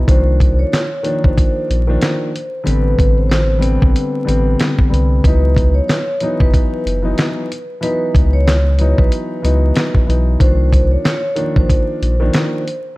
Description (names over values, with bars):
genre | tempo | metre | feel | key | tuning
hip hop, boom-bap hip-hop | 93 BPM | 4/4 | swing 59% on 16ths | unclear | A4 = 440 Hz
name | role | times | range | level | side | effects
vibraphone with soft mallets | melody | 0.0-12.9 s | B4 to C#5 | -22 LUFS | right 1 dB | digital delay
dark grand piano | accompaniment | 0.0-12.6 s | D3 to D#4 | -20 LUFS | left 1 dB | none
saturated sub bass | bass | 0.0-12.3 s | F#1 to C#2 | -14 LUFS | equal | none
dusty soul sampler-style drum kit | drums | 0.1-12.8 s | handclaps, hi-hat, kick drum, snare drum | -15 LUFS | equal | none
room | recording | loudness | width
small room ambience | dark, warm production, vinyl crackle | -12 LUFS | side -20 dB against mid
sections
0.0-13.0 A section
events
none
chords
0.1 Cm11; 2.7 Am11; 5.2 C#m11; 10.4 Cm11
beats
| 0.08 0.72 1.37 2.02 | 2.66 3.31 3.95 4.59 | 5.24 5.89 6.53 7.18 | 7.82 8.47 9.11 9.76 | 10.40 11.05 11.69 12.34